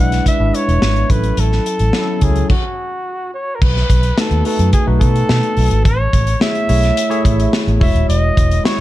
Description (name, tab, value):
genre	polished 1980s jazz-funk pop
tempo	107 BPM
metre	4/4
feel	straight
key	unclear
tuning	A4 = 438 Hz
part	warm flugelhorn	melody	0.0-8.8 s	F#4 to F#5	-20 LUFS	equal	none
part	tine electric piano	accompaniment	0.0-8.8 s	F#3 to E5	-20 LUFS	left 1 dB	wide subtle chorus
part	vintage muted fingered electric bass	bass	0.0-8.6 s	D#1 to B2	-15 LUFS	equal	none
part	modern studio drum kit	drums	0.1-8.8 s	crash cymbal, hi-hat, kick drum, snare drum	-17 LUFS	equal	none
room	small room ambience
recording	dark, warm production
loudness	-12 LUFS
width	side -15 dB against mid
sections	0.0-3.6 A section; 3.6-8.8 B section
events	stop 2.5-3.6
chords	0.0 E7; 1.1 A6; 2.5 N.C.; 3.6 B7; 5.9 Amaj7; 7.8 E69